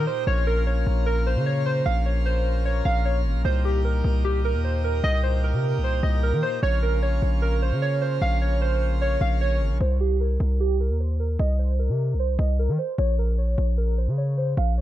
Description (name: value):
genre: hip hop, trap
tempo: 151 BPM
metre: 4/4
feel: half-time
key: C phrygian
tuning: A4 = 440 Hz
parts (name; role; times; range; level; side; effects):
- warbly lo-fi synth keys; melody; 0.0-14.8 s; G4 to F5; -27 LUFS; right 1 dB; chorus, low-pass filter
- pipe organ, plenum; sustained chords; 0.0-9.8 s; Bb2 to G4; -31 LUFS; left 1 dB; none
- hard-hitting 808-style bass; bass; 0.0-14.8 s; Ab1 to Eb3; -22 LUFS; equal; none
room: small room reverb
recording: dark, warm production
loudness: -21 LUFS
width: side -13 dB against mid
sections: 0.0-9.8 A section; 9.8-14.8 B section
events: none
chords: 0.3 Bbmadd9; 3.4 Cm7; 6.6 Bbmadd9; 9.8 Cm7; 13.0 Bbm